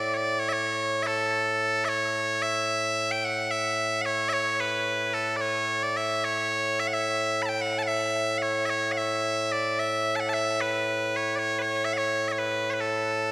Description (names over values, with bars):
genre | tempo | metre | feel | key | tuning
scottish traditional, Scottish pipe music | 110 BPM | 4/4 | straight | A major | A4 = 440 Hz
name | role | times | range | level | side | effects
loud bright bagpipes | solo | 0.0-13.3 s | A2 to B5 | -27 LUFS | equal | none
room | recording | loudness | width
wet concert hall reverb, RT60 2.5 s | none | -27 LUFS | mono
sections
0.0-13.3 A section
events
none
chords
none